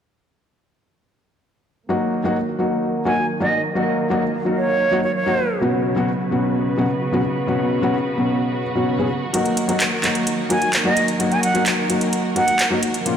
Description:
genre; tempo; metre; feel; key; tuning
EDM, festival progressive house; 129 BPM; 4/4; straight; Eb minor; A4 = 439 Hz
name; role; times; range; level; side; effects
felt-muted upright piano; accompaniment; 1.9-13.2 s; Bb2 to Ab4; -20 LUFS; left 2 dB; digital delay
warm chamber string section; sustained chords; 1.9-13.2 s; C#3 to F5; -24 LUFS; right 2 dB; low-pass filter
bright concert flute; melody; 3.1-5.6, 10.5-12.7 s; Db5 to Ab5; -22 LUFS; right 2 dB; tape echo
house drum kit; drums; 9.3-13.2 s; handclaps, hi-hat; -22 LUFS; right 1 dB; overdrive
room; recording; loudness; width
light reverb, studio reverb; played on a big sound system in a bare room, large studio reverb; -17 LUFS; side -8 dB against mid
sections
1.9-13.2 A section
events
filter sweep on string section 1.9-13.2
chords
1.9 Ebm; 5.6 Bsus2; 9.3 Ebm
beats
| 1.90 2.36 2.83 3.29 | 3.76 4.22 4.69 5.15 | 5.62 6.08 6.55 7.01 | 7.48 7.94 8.41 8.87 | 9.34 9.80 10.27 10.73 | 11.20 11.66 12.13 12.59 | 13.06

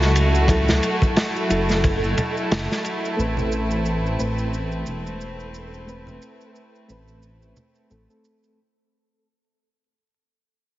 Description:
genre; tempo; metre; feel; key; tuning
trip hop; 89 BPM; 4/4; swing 56% on 16ths; unclear; A4 = 440 Hz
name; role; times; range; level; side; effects
mellow reed electric piano; accompaniment; 0.0-8.6 s; F#3 to B4; -28 LUFS; equal; tremolo, low-pass filter, tape echo
rich chamber violin section; sustained chords; 0.0-8.5 s; A3 to B4; -27 LUFS; right 1 dB; vintage 12-bit sampler grit
dark detuned saw bass; bass; 0.0-8.1 s; E1 to C#2; -23 LUFS; equal; tube saturation
crunchy breakbeat drum kit; drums; 0.0-3.0 s; kick drum, ride cymbal, snare drum; -23 LUFS; equal; none
maracas and congas; percussion; 0.0-8.6 s; none; -31 LUFS; right 1 dB; none
flickering grainy texture; texture; 0.0-8.6 s; A4; -32 LUFS; right 2 dB; built-in reverb
room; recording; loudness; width
light reverb; heavily compressed radio sound, multiband compression, vinyl crackle, nothing above 7.5 kHz; -19 LUFS; side -15 dB against mid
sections
0.0-8.6 A section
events
fade-out 0.0-8.6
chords
0.0 F#m7; 3.2 Amadd9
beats
| 0.49 1.16 1.84 2.51 | 3.18 3.86 4.53 5.21 | 5.88 6.55 7.23 7.90

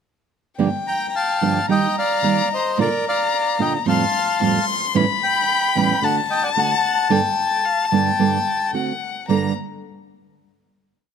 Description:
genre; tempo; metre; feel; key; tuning
tango; 111 BPM; 4/4; rubato; G minor; A4 = 440 Hz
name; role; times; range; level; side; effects
warm violin; second line; 0.6-9.5 s; F5 to C6; -23 LUFS; left 6 dB; none
nylon-string guitar; accompaniment; 0.6-9.5 s; E2 to A4; -21 LUFS; right 6 dB; none
bandoneon; melody; 0.9-9.5 s; Bb4 to B5; -21 LUFS; left 2 dB; none
room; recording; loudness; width
light reverb; close, detailed microphones; -17 LUFS; side -7 dB against mid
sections
0.6-9.3 A section; 9.3-11.1 final chord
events
none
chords
0.6 Gm7; 1.7 Eb; 2.8 Bb; 3.9 Fadd9; 5.0 A7/E; 6.0 D; 7.1 Gmadd9; 8.7 D7; 9.3 Gmadd9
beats
| 0.59 1.14 1.69 2.24 | 2.79 3.33 3.87 4.41 | 4.96 5.49 6.03 6.57 | 7.11 7.65 8.20 8.75 | 9.30

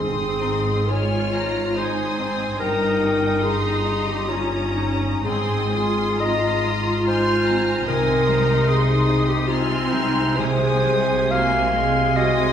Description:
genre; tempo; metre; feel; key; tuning
classical; 69 BPM; 3/4; uneven beats, rubato; Ab major; A4 = 439 Hz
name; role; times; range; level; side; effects
rich studio violin section; melody; 0.0-12.5 s; C6 to F6; -31 LUFS; left 4 dB; none
clear symphonic violin section; second line; 0.0-12.5 s; G5 to C6; -28 LUFS; equal; none
mellow clarinet; second line; 0.0-12.5 s; Eb4 to F5; -23 LUFS; left 1 dB; none
clear symphonic viola section; accompaniment; 0.0-12.5 s; Ab3 to F4; -26 LUFS; equal; none
concert harp; arpeggios; 0.0-12.5 s; G2 to Eb5; -27 LUFS; left 4 dB; none
rich symphonic cello section; bass; 0.0-12.5 s; G2 to C3; -27 LUFS; right 2 dB; none
rich symphonic double bass section; bass; 0.0-12.5 s; G1 to C2; -27 LUFS; right 3 dB; none
timpani; percussion; 0.0-1.3 s; Ab2; -33 LUFS; right 2 dB; none
room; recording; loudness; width
wet recital hall reverb, RT60 1.6 s; recorded in a church or concert hall; -18 LUFS; side -8 dB against mid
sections
0.0-12.5 A section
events
none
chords
0.0 Ab; 2.6 Eb7/G; 5.2 Ab; 7.9 Ab/C; 10.4 Ab7/C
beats
0.90 1.77 | 2.60 3.43 4.28 | 5.25 6.20 7.08 | 7.88 8.69 9.49 | 10.39 11.32 12.17

